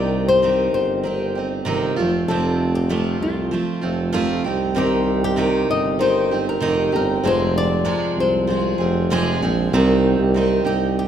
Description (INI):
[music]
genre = acoustic pop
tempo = 97 BPM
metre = 4/4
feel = straight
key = C minor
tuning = A4 = 439 Hz
[part]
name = flamenco guitar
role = melody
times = 0.0-11.1 s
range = F4 to Eb5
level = -23 LUFS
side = left 4 dB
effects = none
[part]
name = picked steel-string acoustic guitar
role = accompaniment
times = 0.0-11.1 s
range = F2 to Ab4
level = -21 LUFS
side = right 3 dB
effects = none
[part]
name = warm tuba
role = bass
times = 0.0-11.1 s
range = F1 to C2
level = -22 LUFS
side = right 1 dB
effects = none
[part]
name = dark upright piano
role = accompaniment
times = 4.8-9.7 s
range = G3 to C5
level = -28 LUFS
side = left 8 dB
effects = none
[sound]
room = moderate concert hall reverb, RT60 2.2 s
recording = recorded in a church or concert hall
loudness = -17 LUFS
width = side -9 dB against mid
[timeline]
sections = 0.0-9.7 A section; 9.7-11.1 B section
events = none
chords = 0.0 Cm; 2.0 F; 4.5 Cm; 7.2 Fm; 9.7 Cm